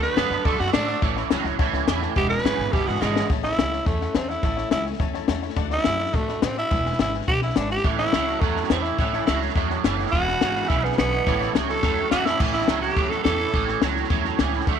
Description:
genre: rockabilly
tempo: 211 BPM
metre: 4/4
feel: straight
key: A major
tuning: A4 = 440 Hz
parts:
  - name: growling tenor saxophone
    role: melody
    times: 0.0-13.8 s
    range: G#3 to B4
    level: -25 LUFS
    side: right 2 dB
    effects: none
  - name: honky-tonk upright piano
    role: accompaniment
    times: 0.0-12.3 s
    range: B4 to B5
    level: -35 LUFS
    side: left 11 dB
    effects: none
  - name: picked steel-string acoustic guitar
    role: accompaniment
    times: 0.0-14.8 s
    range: E2 to F#4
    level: -34 LUFS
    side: left 13 dB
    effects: none
  - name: electric guitar at the edge of break-up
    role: riff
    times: 0.0-3.3, 7.8-14.8 s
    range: E2 to B3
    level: -26 LUFS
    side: right 14 dB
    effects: ensemble chorus
  - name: upright bass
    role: bass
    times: 0.0-14.8 s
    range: E1 to A2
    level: -29 LUFS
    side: right 1 dB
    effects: none
  - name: compact cocktail drum kit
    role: drums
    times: 0.0-14.7 s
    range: crash cymbal, hi-hat, kick drum, snare drum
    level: -25 LUFS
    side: left 3 dB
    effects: none
room: light reverb, studio ambience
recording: 1960s-style stereo with parts hard left and right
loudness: -20 LUFS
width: side -8 dB against mid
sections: 0.0-3.3 A section; 3.3-12.4 B section; 12.4-14.8 C section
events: drum fill 3.0, 11.8-12.4; honky-tonk piano fill 5.1-5.6; tenor saxophone solo 12.4-14.8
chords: 0.0 D; 1.0 A; 2.2 E7; 3.3 A; 5.6 D; 6.7 E7; 7.8 A; 10.1 E7; 11.3 A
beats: 0.16 0.45 0.73 | 1.02 1.30 1.58 1.87 | 2.15 2.44 2.72 3.01 | 3.29 3.58 3.86 4.14 | 4.43 4.71 5.00 5.28 | 5.57 5.85 6.14 6.42 | 6.71 6.99 7.28 7.56 | 7.85 8.13 8.42 8.70 | 8.99 9.27 9.55 9.84 | 10.12 10.41 10.69 10.98 | 11.26 11.55 11.83 12.11 | 12.40 12.68 12.97 13.25 | 13.54 13.82 14.10 14.39 | 14.67

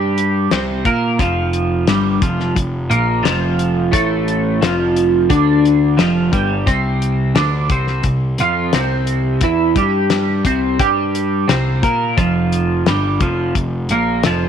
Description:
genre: psychedelic rock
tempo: 87 BPM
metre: 4/4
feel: straight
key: C mixolydian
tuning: A4 = 440 Hz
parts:
  - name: twelve-string electric guitar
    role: riff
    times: 0.0-14.5 s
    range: F2 to Bb4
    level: -16 LUFS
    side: right 1 dB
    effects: flanger
  - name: fuzz picked electric bass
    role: bass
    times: 0.0-14.5 s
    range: F1 to Bb2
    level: -20 LUFS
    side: equal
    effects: overdrive
  - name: damped 70s drum kit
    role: drums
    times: 0.2-14.4 s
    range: hi-hat, kick drum, snare drum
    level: -19 LUFS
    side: left 3 dB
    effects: none
room: light reverb, small room reverb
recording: 1960s-style stereo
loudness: -14 LUFS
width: side -8 dB against mid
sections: 0.0-14.5 A section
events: none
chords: 0.0 C5; 1.2 F69; 6.7 C; 12.2 Fsus2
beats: 0.52 | 1.20 1.88 2.57 3.25 | 3.93 4.62 5.30 5.99 | 6.67 7.36 8.05 8.73 | 9.42 10.11 10.80 11.49 | 12.18 12.87 13.56 14.25

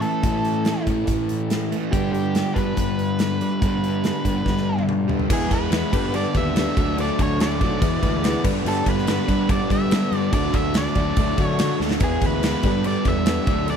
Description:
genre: classic rock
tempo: 143 BPM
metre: 4/4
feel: straight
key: unclear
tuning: A4 = 437 Hz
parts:
  - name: octave-fuzz lead guitar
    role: melody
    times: 0.0-13.8 s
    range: G4 to E5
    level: -28 LUFS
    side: right 1 dB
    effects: distortion, slapback echo
  - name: overdriven semi-hollow guitar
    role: riff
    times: 0.0-13.8 s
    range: G2 to E4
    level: -26 LUFS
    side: left 15 dB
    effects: none
  - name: overdriven semi-hollow guitar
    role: riff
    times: 0.0-13.8 s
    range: G2 to E4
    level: -26 LUFS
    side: right 14 dB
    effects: none
  - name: fuzz fingered electric bass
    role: bass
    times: 0.0-13.8 s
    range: B1 to G3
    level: -26 LUFS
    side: equal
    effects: overdrive
  - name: gated 80s drum kit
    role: drums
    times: 0.0-13.8 s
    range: crash cymbal, hi-hat, kick drum, snare drum, toms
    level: -24 LUFS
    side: equal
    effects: none
  - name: overdriven tonewheel organ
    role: sustained chords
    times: 5.0-13.8 s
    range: A3 to D5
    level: -37 LUFS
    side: equal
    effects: none
  - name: bright reed electric piano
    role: accompaniment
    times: 5.3-13.8 s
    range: E4 to D5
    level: -32 LUFS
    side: left 12 dB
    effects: overdrive
room: little or no reverb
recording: none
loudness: -19 LUFS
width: side -7 dB against mid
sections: 0.0-5.3 A section; 5.3-13.8 B section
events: drum fill 4.5-5.3, 11.8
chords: 0.0 A; 1.9 G; 5.3 E; 5.9 Gadd9; 6.8 D; 7.8 E; 8.4 Gadd9; 10.3 D; 12.0 E; 12.6 Gadd9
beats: | 0.24 0.66 1.08 1.51 | 1.93 2.35 2.77 3.20 | 3.62 4.04 4.46 4.88 | 5.30 5.72 6.14 6.56 | 6.98 7.40 7.82 8.24 | 8.66 9.08 9.50 9.92 | 10.34 10.76 11.18 11.60 | 12.02 12.44 12.85 13.27 | 13.69

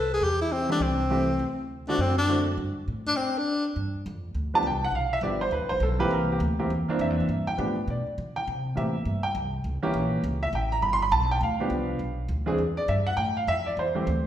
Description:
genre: jazz, small-group swing and bop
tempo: 204 BPM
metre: 4/4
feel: swing 62% on 8ths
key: G mixolydian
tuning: A4 = 440 Hz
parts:
  - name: breathy tenor saxophone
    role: melody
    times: 0.0-3.7 s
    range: C4 to A4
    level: -26 LUFS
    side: left 2 dB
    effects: none
  - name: upright bass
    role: bass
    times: 0.0-14.3 s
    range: G1 to D3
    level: -29 LUFS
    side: equal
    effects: none
  - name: clear upright piano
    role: accompaniment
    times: 0.7-2.5, 4.5-14.3 s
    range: D3 to C6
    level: -26 LUFS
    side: right 1 dB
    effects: none
room: wet recital hall reverb, RT60 1.4 s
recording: recorded in a church or concert hall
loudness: -24 LUFS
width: side -11 dB against mid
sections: 0.0-3.8 A section; 3.8-14.3 B section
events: none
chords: 0.0 Am7; 1.4 D7; 2.6 Gsus2; 3.2 N.C.; 3.8 G7; 6.1 C7; 7.3 G7; 8.5 C7; 9.6 C#dim7; 10.8 G7; 12.0 Bm; 12.6 Em9; 13.2 Am7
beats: | 0.22 0.51 0.81 1.10 | 1.40 1.69 1.99 2.28 | 2.58 2.87 3.17 3.46 | 3.76 4.05 4.35 4.64 | 4.93 5.23 5.52 5.82 | 6.11 6.41 6.70 7.00 | 7.29 7.58 7.88 8.17 | 8.47 8.76 9.05 9.35 | 9.64 9.94 10.23 10.53 | 10.82 11.12 11.41 11.70 | 12.00 12.29 12.59 12.88 | 13.18 13.47 13.77 14.06

